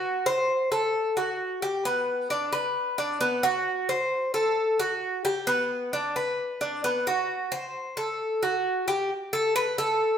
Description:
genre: latin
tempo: 132 BPM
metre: 4/4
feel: straight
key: unclear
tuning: A4 = 440 Hz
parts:
  - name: Cuban tres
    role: solo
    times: 0.0-10.2 s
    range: B3 to C5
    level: -24 LUFS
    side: equal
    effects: none
room: wet stone room reverb, RT60 1.2 s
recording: band playing live in one room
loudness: -24 LUFS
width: side -8 dB against mid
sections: 0.0-9.1 A section; 9.1-10.2 B section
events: Cuban tres solo 9.1-10.2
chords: none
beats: | 0.04 0.49 0.94 1.40 | 1.85 2.30 2.75 3.21 | 3.66 4.11 4.57 5.02 | 5.47 5.93 6.38 6.84 | 7.29 7.74 8.20 8.65 | 9.11 9.56 10.01

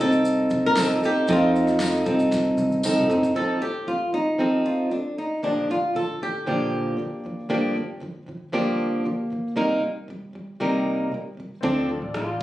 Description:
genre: acoustic pop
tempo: 116 BPM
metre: 4/4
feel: straight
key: F mixolydian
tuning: A4 = 440 Hz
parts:
  - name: flamenco guitar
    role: melody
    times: 0.0-7.2, 12.2-12.4 s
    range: D4 to Bb4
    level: -25 LUFS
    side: left 1 dB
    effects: none
  - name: clear upright piano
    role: accompaniment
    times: 0.0-3.4, 11.6-12.4 s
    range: C4 to Eb5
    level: -33 LUFS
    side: left 3 dB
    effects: none
  - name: fingerpicked plugged-in steel-string acoustic guitar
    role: accompaniment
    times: 0.0-12.4 s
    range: G2 to Bb4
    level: -22 LUFS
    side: equal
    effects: none
  - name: vintage muted fingered electric bass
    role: bass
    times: 0.0-3.1, 11.6-12.4 s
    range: A1 to F2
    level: -31 LUFS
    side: equal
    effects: none
  - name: pop drum kit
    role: drums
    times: 0.1-3.4, 11.6-12.4 s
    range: kick drum, rim click, shaker, snare drum, toms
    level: -31 LUFS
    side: equal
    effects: overdrive
  - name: tambourine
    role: percussion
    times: 0.8-3.0 s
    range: none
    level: -32 LUFS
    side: left 2 dB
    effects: none
room: light reverb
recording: recorded on a phone in the room, studio reverb, compression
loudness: -21 LUFS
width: side -15 dB against mid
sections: 0.0-3.4 A section; 3.4-12.4 B section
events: drum fill 2.3-3.4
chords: 0.0 F7; 5.4 Bb6; 7.5 Gm7; 9.6 Cm7; 11.6 Dm7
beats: 0.25 0.77 | 1.29 1.80 2.32 2.84 | 3.35 3.87 4.39 4.91 | 5.43 5.95 6.46 6.98 | 7.50 8.02 8.54 9.05 | 9.57 10.09 10.60 11.12 | 11.64 12.15

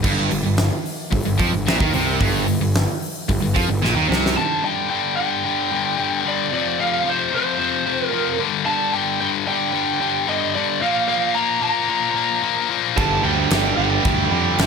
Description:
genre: hard rock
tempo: 112 BPM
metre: 4/4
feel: straight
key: G minor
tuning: A4 = 440 Hz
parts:
  - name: distorted electric guitar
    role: riff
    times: 0.0-4.4, 13.0-14.7 s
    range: G2 to G3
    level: -22 LUFS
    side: right 15 dB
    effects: overdrive
  - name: high-gain distorted guitar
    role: riff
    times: 0.0-14.7 s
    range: F2 to Bb3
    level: -21 LUFS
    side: left 10 dB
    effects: distortion
  - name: fuzz picked electric bass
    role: bass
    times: 0.0-4.3, 13.0-14.7 s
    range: G1 to F2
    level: -23 LUFS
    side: equal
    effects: overdrive
  - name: huge arena drum kit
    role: drums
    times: 0.0-4.4, 13.0-14.7 s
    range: crash cymbal, hi-hat, kick drum, snare drum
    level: -22 LUFS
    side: equal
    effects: none
  - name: lead guitar through a small cranked amp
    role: melody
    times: 4.4-14.7 s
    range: C5 to Bb5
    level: -23 LUFS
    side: right 3 dB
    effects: overdrive
room: studio ambience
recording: none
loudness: -17 LUFS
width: side -5 dB against mid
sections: 0.0-4.4 A section; 4.4-14.7 B section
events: drum fill 3.8-4.4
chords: 0.0 Gm; 4.4 G5; 6.5 F5; 8.4 G5; 10.8 Bb5; 13.0 Gm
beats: | 0.05 0.59 1.13 1.67 | 2.21 2.75 3.29 3.83 | 4.37 4.91 5.45 5.98 | 6.52 7.06 7.60 8.14 | 8.67 9.21 9.75 10.29 | 10.82 11.36 11.90 12.44 | 12.97 13.51 14.05 14.59

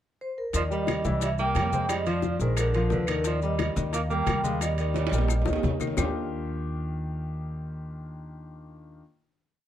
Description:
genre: Afro-Cuban jazz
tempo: 176 BPM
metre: 4/4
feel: straight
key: Eb major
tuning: A4 = 440 Hz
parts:
  - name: vibraphone with medium mallets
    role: melody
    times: 0.2-5.6 s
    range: Bb4 to G5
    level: -31 LUFS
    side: right 2 dB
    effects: none
  - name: warm grand piano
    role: accompaniment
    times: 0.5-9.0 s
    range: Eb3 to F5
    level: -33 LUFS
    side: left 5 dB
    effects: none
  - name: upright bass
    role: bass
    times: 0.5-9.0 s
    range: Bb1 to F2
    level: -29 LUFS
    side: equal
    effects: none
  - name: bongos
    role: percussion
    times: 0.5-6.1 s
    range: none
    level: -36 LUFS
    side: left 8 dB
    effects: none
  - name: congas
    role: percussion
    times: 0.5-6.1 s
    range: none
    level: -34 LUFS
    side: left 2 dB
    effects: none
  - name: maracas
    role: percussion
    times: 0.5-6.1 s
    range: none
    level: -40 LUFS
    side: left 8 dB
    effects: none
  - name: timbales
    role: percussion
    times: 0.5-6.1 s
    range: none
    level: -35 LUFS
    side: right 6 dB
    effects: none
  - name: warm tenor saxophone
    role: second line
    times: 0.6-5.6 s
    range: D3 to Bb3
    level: -33 LUFS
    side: right 4 dB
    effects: analog delay
  - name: claves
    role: percussion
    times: 0.9-6.1 s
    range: none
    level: -40 LUFS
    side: left 6 dB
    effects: none
room: light reverb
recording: dark, warm production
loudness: -25 LUFS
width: side -11 dB against mid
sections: 0.0-0.5 pickup bar; 0.5-6.0 A section; 6.0-8.7 final chord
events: drum fill 5.0-6.0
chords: 0.0 N.C.; 0.5 Eb; 1.2 C7; 1.9 Fm; 2.6 Bb7; 3.2 Eb; 6.0 Ebmaj9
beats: 0.20 | 0.54 0.87 1.21 1.55 | 1.89 2.23 2.57 2.91 | 3.25 3.59 3.93 4.27 | 4.61 4.95 5.29 5.64 | 5.98 6.32 6.66 7.00 | 7.35 7.69 8.03 8.37

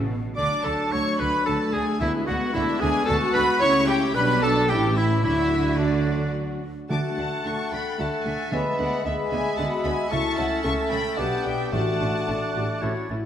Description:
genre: quick classical-period movement for symphony orchestra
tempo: 111 BPM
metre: 3/4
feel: straight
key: D major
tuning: A4 = 440 Hz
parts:
  - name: warm symphonic viola section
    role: accompaniment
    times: 0.0-13.2 s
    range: A3 to A4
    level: -31 LUFS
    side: right 1 dB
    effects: none
  - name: mellow French horn section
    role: sustained chords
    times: 0.0-13.3 s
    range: E3 to B4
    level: -30 LUFS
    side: left 3 dB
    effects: none
  - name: rich chamber double bass section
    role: bass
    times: 0.0-13.2 s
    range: A1 to D2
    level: -31 LUFS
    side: right 2 dB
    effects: none
  - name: rich studio cello section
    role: bass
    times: 0.0-13.2 s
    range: A2 to D3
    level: -30 LUFS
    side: right 2 dB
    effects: none
  - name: rich chamber violin section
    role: melody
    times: 0.4-12.8 s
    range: D5 to D6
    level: -33 LUFS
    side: left 4 dB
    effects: none
  - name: bright clarinet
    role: second line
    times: 0.4-13.1 s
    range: B3 to D5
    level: -28 LUFS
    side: left 1 dB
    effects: none
  - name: clear oboe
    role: second line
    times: 0.4-13.1 s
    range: D4 to F#5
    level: -31 LUFS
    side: right 1 dB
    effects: none
  - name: flute section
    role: second line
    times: 0.4-13.1 s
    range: D5 to A6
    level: -32 LUFS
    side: right 1 dB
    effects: none
  - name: rich chamber violin section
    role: second line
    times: 0.4-12.8 s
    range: B4 to D6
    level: -34 LUFS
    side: left 1 dB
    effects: none
  - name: timpani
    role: percussion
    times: 2.0-2.8, 6.9-12.5 s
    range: A2 to D3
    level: -33 LUFS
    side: equal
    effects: none
  - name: warm bassoon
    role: accompaniment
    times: 6.9-12.9 s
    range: G#3 to B3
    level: -31 LUFS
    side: right 1 dB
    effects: none
room: wet scoring stage reverb, RT60 1.6 s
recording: none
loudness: -21 LUFS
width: side -9 dB against mid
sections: 0.0-6.9 A section; 6.9-13.3 A section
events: none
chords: 0.4 D; 2.0 E9/D; 3.6 A/C#; 4.2 G/B; 4.7 A7; 5.2 D; 8.5 E7/D; 10.1 A/C#; 11.2 G/B; 11.7 D/A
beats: | 0.38 0.93 1.47 | 2.01 2.55 3.08 | 3.62 4.16 4.70 | 5.25 5.79 6.34 | 6.90 7.44 7.98 | 8.52 9.05 9.58 | 10.11 10.64 11.18 | 11.73 12.28 12.82

